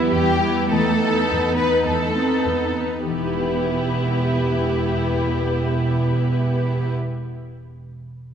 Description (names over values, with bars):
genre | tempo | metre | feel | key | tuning
classical, dramatic, fast romantic movement for symphony orchestra | 105 BPM | 4/4 | straight | E minor | A4 = 441 Hz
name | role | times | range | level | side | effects
rich studio violin section | melody | 0.0-6.9 s | B4 | -28 LUFS | left 4 dB | none
rich symphonic violin section | second line | 0.0-6.9 s | E4 to B4 | -24 LUFS | left 2 dB | none
clear symphonic viola section | accompaniment | 0.0-6.9 s | B3 to G4 | -26 LUFS | right 3 dB | none
concert harp | arpeggios | 0.0-7.3 s | E3 to G5 | -28 LUFS | left 4 dB | none
dark symphonic cello section | bass | 0.0-6.9 s | E2 to C4 | -28 LUFS | right 4 dB | none
rich chamber double bass section | bass | 0.0-6.9 s | E1 to E2 | -24 LUFS | right 2 dB | none
room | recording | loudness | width
wet concert hall reverb, RT60 2.4 s | minimal, uncompressed stereo recording | -18 LUFS | side -8 dB against mid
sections
0.0-3.1 A section; 3.1-7.6 B section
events
slowing down 0.0-3.1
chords
0.0 Em; 0.7 B7/E; 3.1 Em